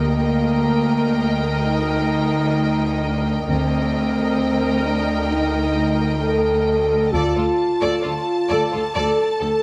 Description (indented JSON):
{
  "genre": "cinematic",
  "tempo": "66 BPM",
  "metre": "4/4",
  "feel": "straight",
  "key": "unclear",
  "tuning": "A4 = 440 Hz",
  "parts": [
    { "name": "warm symphonic violin section", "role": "melody", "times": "0.0-9.6 s", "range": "G5 to A5", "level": "-32 LUFS", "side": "equal", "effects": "none" },
    { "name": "warm symphonic violin section", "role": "second line", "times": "0.0-9.5 s", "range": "F4 to Eb5", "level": "-31 LUFS", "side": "equal", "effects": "none" },
    { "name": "warm symphonic viola section", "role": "accompaniment", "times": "0.0-9.5 s", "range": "A4 to Bb4", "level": "-30 LUFS", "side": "equal", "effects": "none" },
    { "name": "warm French horn section", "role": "sustained chords", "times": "0.0-9.6 s", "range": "Bb3 to A4", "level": "-23 LUFS", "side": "equal", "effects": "none" },
    { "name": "clear symphonic cello section", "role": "bass", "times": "0.0-9.5 s", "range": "D2", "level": "-25 LUFS", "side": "equal", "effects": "none" },
    { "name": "warm symphonic double bass section", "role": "bass", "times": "0.0-7.3 s", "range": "D2", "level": "-28 LUFS", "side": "equal", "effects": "none" }
  ],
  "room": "moderate scoring stage reverb, RT60 1.5 s",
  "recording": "none",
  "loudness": "-20 LUFS",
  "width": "mono",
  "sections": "0.0-9.6 A section",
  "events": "none",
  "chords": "0.0 Eb/D; 7.1 Dm"
}